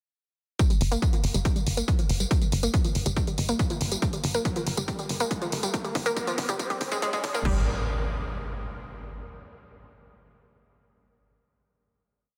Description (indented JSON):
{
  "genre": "driving peak-time techno",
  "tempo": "140 BPM",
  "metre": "4/4",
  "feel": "straight",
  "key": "G phrygian",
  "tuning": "A4 = 440 Hz",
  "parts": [
    { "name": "electronic kick drum", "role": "drums", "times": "0.6-7.5 s", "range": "none", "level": "-28 LUFS", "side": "equal", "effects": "overdrive, studio reverb" },
    { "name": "techno drum kit", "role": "drums", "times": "0.6-7.5 s", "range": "crash cymbal, hi-hat, tambourine", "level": "-36 LUFS", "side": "equal", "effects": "overdrive, sidechain pumping on hats, high-pass filter on hats, studio reverb, sidechain pumping on perc, high-pass filter on perc, sidechain pumping on cymbals, high-pass filter on cymbals" },
    { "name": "riser and impact", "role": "sound effects", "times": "3.0-9.2 s", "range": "none", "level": "-38 LUFS", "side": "equal", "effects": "none" },
    { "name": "analog pluck", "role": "riff", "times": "0.7-7.7 s", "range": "F3 to Bb3", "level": "-34 LUFS", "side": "equal", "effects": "chorus, cassette tape, sidechain pumping, dub echo" },
    { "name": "tight sequencer bass", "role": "bass", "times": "0.8-7.7 s", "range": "G1", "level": "-31 LUFS", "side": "equal", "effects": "sidechain pumping" }
  ],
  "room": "moderate huge ambient reverb, RT60 4.6 s",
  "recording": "dense, heavily limited modern master, high-pass filter",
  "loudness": "-27 LUFS",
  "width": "mono",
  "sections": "0.6-7.5 build; 7.5-9.2 final chord",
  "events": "build-up 0.6-7.5; filter sweep on synth arpeggio sound 0.6-7.5; filter sweep 0.6-7.5; riser 3.0-7.5; drum fill 4.0-7.5",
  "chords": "none"
}